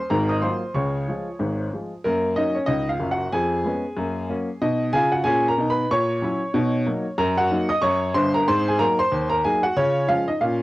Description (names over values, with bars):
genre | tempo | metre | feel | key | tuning
jazz, stride piano | 186 BPM | 4/4 | swing 60% on 8ths | F# major, Db major from 7.2 s | A4 = 440 Hz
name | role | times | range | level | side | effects
warm upright piano | solo | 0.0-10.6 s | F#1 to Eb6 | -20 LUFS | equal | none
room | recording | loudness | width
moderate studio ambience, RT60 0.5 s | home recording on cassette | -20 LUFS | side -18 dB against mid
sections
0.0-2.0 A section; 2.0-10.6 B section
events
none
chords
0.1 Ab13; 0.8 Db; 2.0 F#; 3.3 C#7/E#; 4.0 F#; 4.6 B; 5.9 F#7/A#; 6.5 Bmaj7; 7.2 Ebm/Gb; 8.5 Ab9; 9.8 Db